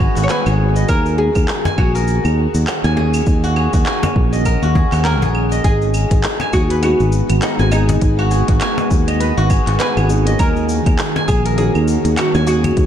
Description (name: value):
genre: organic downtempo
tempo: 101 BPM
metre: 4/4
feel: swing 58% on 16ths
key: G# minor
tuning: A4 = 440 Hz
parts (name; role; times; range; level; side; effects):
- bowed-like drone; sustained chords; 0.0-12.9 s; D#3 to F#4; -24 LUFS; right 1 dB; built-in reverb, sidechain pumping
- steel-string zither; arpeggios; 0.0-12.9 s; F#4 to G#5; -22 LUFS; left 2 dB; vintage 12-bit sampler grit, digital delay
- fretless electric bass; bass; 0.0-12.9 s; G#1 to D#2; -16 LUFS; equal; sidechain pumping
- electronic kick drum; drums; 0.0-12.9 s; none; -17 LUFS; equal; none
- oud; melody; 0.2-12.9 s; D#4 to C#5; -22 LUFS; right 1 dB; digital delay
- organic electronic drum kit; drums; 0.2-12.9 s; claves, handclaps, hi-hat, shaker; -25 LUFS; equal; none
- cajon; percussion; 1.7-12.7 s; none; -23 LUFS; left 2 dB; none
- felt-muted upright piano; accompaniment; 6.8-12.9 s; G#3 to G#4; -24 LUFS; left 4 dB; sidechain pumping, digital delay
room: light reverb, small room reverb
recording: dark, warm production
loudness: -13 LUFS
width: side -10 dB against mid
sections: 0.0-5.6 A section; 5.6-12.9 B section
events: none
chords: 0.0 G#m7; 0.9 D#m7; 5.6 G#m7; 10.4 D#m7